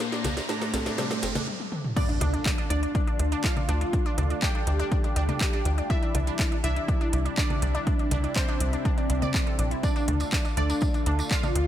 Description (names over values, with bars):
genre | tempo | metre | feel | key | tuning
melodic techno | 122 BPM | 4/4 | straight | D minor | A4 = 441 Hz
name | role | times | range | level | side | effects
wide unison lead | melody | 0.0-11.7 s | A3 to G4 | -32 LUFS | equal | ensemble chorus, sidechain pumping, dub echo
lush unison pad | sustained chords | 0.0-11.7 s | C3 to Bb5 | -37 LUFS | equal | chorus, sidechain pumping
wide unison pluck | arpeggios | 0.0-11.6 s | C4 to D6 | -34 LUFS | right 1 dB | auto-pan, sidechain pumping, dub echo
house drum kit | drums | 0.0-11.7 s | congas, crash cymbal, handclaps, hi-hat, snare drum, toms | -32 LUFS | left 1 dB | overdrive
tambourine | percussion | 0.0-1.5, 9.8-11.5 s | none | -42 LUFS | right 2 dB | none
riser and impact | sound effects | 0.0-3.9 s | none | -36 LUFS | equal | none
tight sequencer bass | bass | 0.2-11.7 s | G1 to D2 | -26 LUFS | equal | sidechain pumping
filtered dub chord stab | stabs | 0.7-1.1, 10.6-11.0 s | C3 to D4 | -36 LUFS | right 2 dB | phaser, sidechain pumping, dub echo
glassy wavetable pluck | second line | 2.0-11.7 s | C5 to G5 | -38 LUFS | right 1 dB | chorus, sidechain pumping, dub echo
electronic kick drum | drums | 2.0-11.4 s | none | -27 LUFS | equal | overdrive
room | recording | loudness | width
light reverb | none | -24 LUFS | side -11 dB against mid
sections
0.0-2.0 A section; 2.0-11.7 B section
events
build-up 0.0-2.0; drum fill 0.0-1.5, 1.5-2.0; riser 0.0-1.5; filter sweep on synth stab 0.0-2.0; filter sweep on analog synth pad 0.0-2.0; stop 1.5-2.0; drop 2.0-11.7; impact 2.0-3.9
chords
0.0 C; 2.0 Dm; 5.9 C; 9.8 Dm